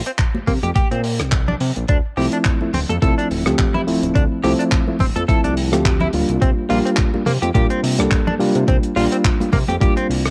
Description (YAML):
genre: nu-disco, nu disco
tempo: 106 BPM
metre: 4/4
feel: swing 56% on 16ths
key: unclear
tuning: A4 = 439 Hz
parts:
  - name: direct-recorded clean electric guitar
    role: riff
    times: 0.1-10.1 s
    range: Bb3 to A4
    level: -27 LUFS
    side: equal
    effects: analog chorus, cassette tape, tape echo
  - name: damped 70s drum kit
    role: drums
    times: 0.1-10.3 s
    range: handclaps, hi-hat, rim click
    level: -29 LUFS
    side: equal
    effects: small room reverb, cassette tape
  - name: electronic kick drum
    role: drums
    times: 0.2-9.9 s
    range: none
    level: -20 LUFS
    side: equal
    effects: small room reverb, cassette tape
  - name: congas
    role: percussion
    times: 0.3-9.8 s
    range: none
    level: -29 LUFS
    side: equal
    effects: none
  - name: fat analog bass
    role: bass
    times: 0.5-10.3 s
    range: D1 to C3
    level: -24 LUFS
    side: equal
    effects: none
  - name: reed electric piano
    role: accompaniment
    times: 2.2-10.2 s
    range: F3 to A4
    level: -22 LUFS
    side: equal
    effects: fast tremolo, cassette tape, tape echo
room: light reverb, studio ambience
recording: home recording on cassette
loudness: -18 LUFS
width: mono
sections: 0.0-10.3 A section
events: none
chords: 0.0 C7(no3); 1.9 Dm7; 6.4 C7sus4